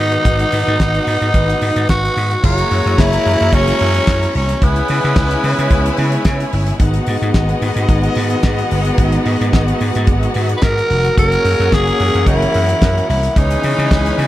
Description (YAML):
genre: disco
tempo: 110 BPM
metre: 4/4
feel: straight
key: unclear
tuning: A4 = 440 Hz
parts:
  - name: breathy tenor saxophone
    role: melody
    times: 0.0-6.3, 10.6-14.3 s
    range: B3 to B4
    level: -17 LUFS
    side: equal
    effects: tape echo
  - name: clear studio string section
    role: second line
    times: 0.0-14.3 s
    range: B3 to A#5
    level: -22 LUFS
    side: equal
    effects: none
  - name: clear studio string section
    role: sustained chords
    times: 0.0-14.3 s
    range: C#3 to F#4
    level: -24 LUFS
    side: right 1 dB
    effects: none
  - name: vintage slap bass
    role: bass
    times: 0.0-14.3 s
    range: E#1 to C#3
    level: -17 LUFS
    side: equal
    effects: none
  - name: damped 70s drum kit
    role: drums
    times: 0.1-14.3 s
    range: crash cymbal, hi-hat, kick drum, snare drum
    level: -17 LUFS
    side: equal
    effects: none
  - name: warm horn section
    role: stabs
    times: 2.4-14.3 s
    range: E3 to D#5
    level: -23 LUFS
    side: left 4 dB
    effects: tape echo
room: small room reverb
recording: none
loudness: -12 LUFS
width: side -14 dB against mid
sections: 0.0-2.4 A section; 2.4-14.3 B section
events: none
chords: 0.0 G#m7; 2.4 F#9; 4.6 C#m7; 6.8 G#m7; 11.2 F#9; 13.4 C#m7